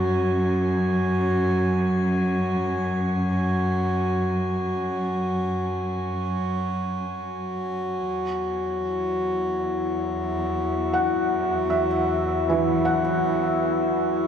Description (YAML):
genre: ambient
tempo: free time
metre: none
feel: none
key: unclear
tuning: A4 = 439 Hz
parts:
  - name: rich studio cello section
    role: bass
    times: 0.0-14.3 s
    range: E2 to F#2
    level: -27 LUFS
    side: right 1 dB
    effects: none
  - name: hand-pumped harmonium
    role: drone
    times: 0.0-14.3 s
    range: F#3 to F#4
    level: -26 LUFS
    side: equal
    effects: none
  - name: drifting glass-harmonics texture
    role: texture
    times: 0.0-14.3 s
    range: E4 to G#5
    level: -31 LUFS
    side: left 4 dB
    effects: chorus, built-in reverb
  - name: felt-muted upright piano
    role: arpeggios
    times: 10.9-14.3 s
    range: E3 to F#5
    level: -24 LUFS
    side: right 1 dB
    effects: diffuse ambient delay
room: wet cathedral reverb, RT60 5.5 s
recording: in a vast, echoing space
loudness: -22 LUFS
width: side -8 dB against mid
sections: 0.0-14.3 A section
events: fade-in on synth texture 0.0-14.3; fade-out on cello section 0.0-14.3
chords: 0.0 F#sus2; 8.0 C#madd11/E (rootless)